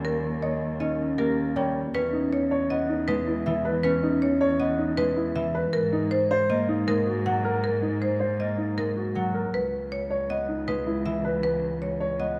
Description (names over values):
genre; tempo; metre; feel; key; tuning
classical, minimalist pattern music; 158 BPM; 5/4; straight; E lydian; A4 = 440 Hz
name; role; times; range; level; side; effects
marimba with hard mallets; melody; 0.0-12.4 s; A#4 to G5; -31 LUFS; equal; none
concert harp; accompaniment; 0.0-12.4 s; E3 to C#4; -32 LUFS; equal; none
rich cello; bass; 0.0-12.4 s; C#2 to G#2; -33 LUFS; equal; none
dark grand piano; arpeggios; 0.4-12.2 s; D#4 to D#5; -32 LUFS; equal; none
room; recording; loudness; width
moderate scoring stage reverb, RT60 1.9 s; none; -26 LUFS; mono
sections
0.0-1.9 A section; 1.9-12.4 B section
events
none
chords
0.0 D#7; 1.9 Emaj7; 5.7 G#7; 9.5 C#m7